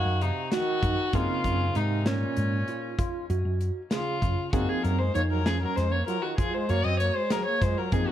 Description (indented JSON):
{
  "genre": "progressive instrumental, band music in an uneven meter",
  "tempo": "194 BPM (eighths)",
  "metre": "11/8",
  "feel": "straight",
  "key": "Gb lydian",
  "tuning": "A4 = 438 Hz",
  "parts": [
    { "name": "dark violin", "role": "melody", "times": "0.0-8.1 s", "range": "Db4 to Eb5", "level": "-29 LUFS", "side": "left 2 dB", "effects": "plate reverb, ping-pong delay" },
    { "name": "clear trombone", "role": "second line", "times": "0.0-8.1 s", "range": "Bb2 to C4", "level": "-35 LUFS", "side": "right 4 dB", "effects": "none" },
    { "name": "clear grand piano", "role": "accompaniment", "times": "0.0-8.1 s", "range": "F3 to Db5", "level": "-39 LUFS", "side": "left 4 dB", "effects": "none" },
    { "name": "tine electric piano", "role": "arpeggios", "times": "0.0-8.1 s", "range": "C4 to F5", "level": "-33 LUFS", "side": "right 3 dB", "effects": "fast stereo tremolo" },
    { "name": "hollow-body short-scale picked electric bass", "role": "bass", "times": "0.0-8.0 s", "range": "F2 to Ab2", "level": "-27 LUFS", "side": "equal", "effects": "none" },
    { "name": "modern studio drum kit", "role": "drums", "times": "0.2-8.1 s", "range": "hi-hat, kick drum, snare drum", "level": "-30 LUFS", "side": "equal", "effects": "none" }
  ],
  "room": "moderate studio reverb, RT60 0.5 s",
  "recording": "none",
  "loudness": "-24 LUFS",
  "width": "side -11 dB against mid",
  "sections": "0.0-8.1 A section",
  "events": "none",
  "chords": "0.0 Ebm7; 1.1 Bbm9/Gb; 4.5 Gbmaj9#11"
}